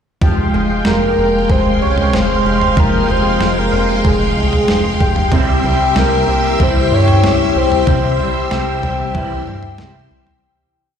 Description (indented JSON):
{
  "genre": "dream pop",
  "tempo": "94 BPM",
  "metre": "4/4",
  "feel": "straight",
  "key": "F harmonic minor",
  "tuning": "A4 = 441 Hz",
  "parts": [
    { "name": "string machine, violins", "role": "sustained chords", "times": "0.2-10.4 s", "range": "Ab3 to E6", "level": "-19 LUFS", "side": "equal", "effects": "ensemble chorus" },
    { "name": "picked twelve-string acoustic guitar", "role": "arpeggios", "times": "0.2-11.0 s", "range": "C3 to G4", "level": "-20 LUFS", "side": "left 4 dB", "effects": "wide subtle chorus, digital delay" },
    { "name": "chorused synth bass", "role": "bass", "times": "0.2-10.4 s", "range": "F1 to G2", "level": "-19 LUFS", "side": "equal", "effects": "none" },
    { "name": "crisp 8-bit digital drum machine", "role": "drums", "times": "0.2-10.4 s", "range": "kick drum, snare drum, toms", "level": "-18 LUFS", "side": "right 1 dB", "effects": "overdrive" },
    { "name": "soft octave-layered synth lead", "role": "melody", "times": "0.9-9.8 s", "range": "Ab4 to Db5", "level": "-18 LUFS", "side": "equal", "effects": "chorus, digital delay" },
    { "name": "clean electric guitar", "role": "accompaniment", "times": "5.3-10.4 s", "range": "C3 to E4", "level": "-22 LUFS", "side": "right 3 dB", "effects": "harmonic tremolo, ensemble chorus" }
  ],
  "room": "moderate scoring stage reverb, RT60 1.9 s, digital ambience",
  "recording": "played on a big sound system in a bare room, large studio reverb",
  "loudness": "-12 LUFS",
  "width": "side -8 dB against mid",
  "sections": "0.2-10.4 verse",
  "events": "fade-out 7.9-10.4",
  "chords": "0.2 Fmadd9; 5.3 C",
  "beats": "| 0.22 0.86 1.50 2.13 | 2.77 3.41 4.05 4.69 | 5.33 5.96 6.60 7.24 | 7.88 8.52 9.15 9.79"
}